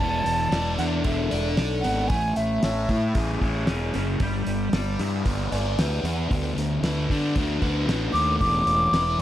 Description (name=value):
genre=psychedelic rock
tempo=114 BPM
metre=4/4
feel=straight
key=unclear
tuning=A4 = 441 Hz
part: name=mellow hollow jazz flute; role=melody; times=0.0-3.4, 8.1-9.2 s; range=E5 to D6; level=-25 LUFS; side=equal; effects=tape echo
part: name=fuzz guitar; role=riff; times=0.0-9.2 s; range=D3 to D5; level=-27 LUFS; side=left 1 dB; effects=distortion, phaser, tape echo
part: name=fuzz fingered electric bass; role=bass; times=0.0-9.2 s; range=E1 to D3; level=-26 LUFS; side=equal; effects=overdrive
part: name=cloth-damped thuddy drum kit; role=drums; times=0.0-9.2 s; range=crash cymbal, hi-hat, kick drum, snare drum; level=-28 LUFS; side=equal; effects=tape echo
room=small room ambience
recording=echo-heavy mix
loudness=-22 LUFS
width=side -13 dB against mid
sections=0.0-9.2 A section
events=none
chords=0.0 E7sus4; 2.1 Amaj7; 4.2 G6; 6.3 D6; 8.4 E7sus4